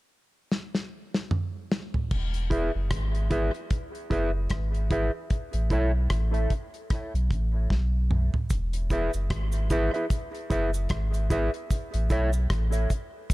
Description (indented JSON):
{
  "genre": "dub reggae",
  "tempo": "75 BPM",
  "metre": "4/4",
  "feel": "swing 58% on 16ths",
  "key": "E major",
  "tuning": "A4 = 441 Hz",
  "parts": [
    { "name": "damped 70s drum kit", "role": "drums", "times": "0.5-13.3 s", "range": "crash cymbal, hi-hat, kick drum, rim click, snare drum, toms", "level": "-28 LUFS", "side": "equal", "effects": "none" },
    { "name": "warm sub bass", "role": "bass", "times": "2.1-12.9 s", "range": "E1 to B1", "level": "-26 LUFS", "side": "equal", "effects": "none" },
    { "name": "mellow electric guitar", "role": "accompaniment", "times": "2.5-12.3 s", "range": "E4 to E5", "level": "-30 LUFS", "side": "right 1 dB", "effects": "dub echo" },
    { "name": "cabasa", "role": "percussion", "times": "8.5-13.3 s", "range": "none", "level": "-44 LUFS", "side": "right 6 dB", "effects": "none" }
  ],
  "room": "studio reverb",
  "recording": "dark, warm production",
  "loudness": "-25 LUFS",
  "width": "side -19 dB against mid",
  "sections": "0.0-2.1 A section; 2.1-8.5 B section; 8.5-13.3 C section",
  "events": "drum fill 0.5-2.1, 7.7-8.5",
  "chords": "0.0 N.C.; 2.1 E; 5.3 A5; 8.5 E; 11.7 A5",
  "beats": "0.51 1.31 | 2.11 2.91 3.71 4.51 | 5.31 6.11 6.91 7.71 | 8.51 9.31 10.10 10.90 | 11.70 12.50 13.30"
}